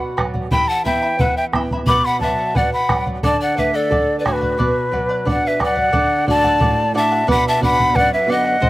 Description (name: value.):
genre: andean folk, Andean ensemble.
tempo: 89 BPM.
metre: 2/4.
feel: straight.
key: B minor.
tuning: A4 = 440 Hz.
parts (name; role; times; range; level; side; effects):
breathy reedy large quena; melody; 0.0-8.7 s; B4 to D6; -18 LUFS; equal; slapback echo.
breathy bright pan flute; second line; 0.0-8.7 s; F#4 to B5; -22 LUFS; left 3 dB; slapback echo.
charango; accompaniment; 0.0-8.7 s; E4 to B5; -25 LUFS; right 1 dB; slapback echo.
nylon-string guitar; accompaniment; 0.0-8.7 s; F#2 to B4; -24 LUFS; right 2 dB; none.
bombo; percussion; 0.2-8.7 s; none; -21 LUFS; equal; none.
room: little or no reverb.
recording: recorded outdoors, with no room sound.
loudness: -15 LUFS.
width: side -17 dB against mid.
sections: 0.0-5.9 A section; 5.9-8.7 B section.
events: none.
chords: 0.0 Bm; 0.5 Em; 1.9 Bm; 3.2 D; 4.6 Bm; 5.9 D; 7.3 Bm.